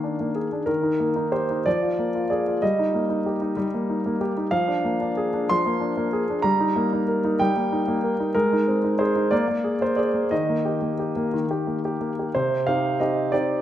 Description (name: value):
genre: classical-period piano sonatina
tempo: 62 BPM (dotted quarters)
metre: 6/8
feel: rubato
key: Eb major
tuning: A4 = 440 Hz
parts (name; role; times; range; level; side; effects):
- warm concert grand piano; solo; 0.0-13.6 s; C3 to C6; -21 LUFS; equal; none
room: wet recital hall reverb, RT60 1.5 s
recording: none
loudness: -21 LUFS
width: side -11 dB against mid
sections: 0.0-12.4 A section; 12.4-13.6 B section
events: none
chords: 0.0 Bb7/Eb; 0.7 Eb; 1.7 Bb7/F; 2.6 Eb/G; 4.5 Bb7/F; 6.5 Eb/G; 8.4 Ab; 9.3 Bb7; 10.3 Eb; 12.4 Cm